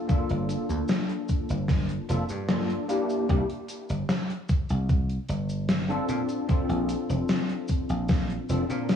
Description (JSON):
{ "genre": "vaporwave", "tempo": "75 BPM", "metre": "4/4", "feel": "straight", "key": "G dorian", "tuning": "A4 = 439 Hz", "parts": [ { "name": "tine electric piano", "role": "accompaniment", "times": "0.0-9.0 s", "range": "Bb3 to Bb4", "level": "-29 LUFS", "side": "left 2 dB", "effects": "ensemble chorus, tape echo" }, { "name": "dry thumbed slap bass", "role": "bass", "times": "0.1-9.0 s", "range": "F1 to Bb2", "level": "-28 LUFS", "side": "equal", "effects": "none" }, { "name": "electronic kick drum", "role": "drums", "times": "0.1-8.3 s", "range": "none", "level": "-24 LUFS", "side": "equal", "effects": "overdrive, vintage 12-bit sampler grit" }, { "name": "gated 80s drum kit", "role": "drums", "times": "0.1-9.0 s", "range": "cabasa, hi-hat, snare drum", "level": "-29 LUFS", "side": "left 1 dB", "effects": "vintage 12-bit sampler grit, gated reverb" } ], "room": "light reverb, studio reverb", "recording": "cassette tape, small room ambience", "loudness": "-24 LUFS", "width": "side -8 dB against mid", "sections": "0.0-9.0 A section", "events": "none", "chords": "0.0 Gm9; 2.9 C7; 6.1 Bbmaj7" }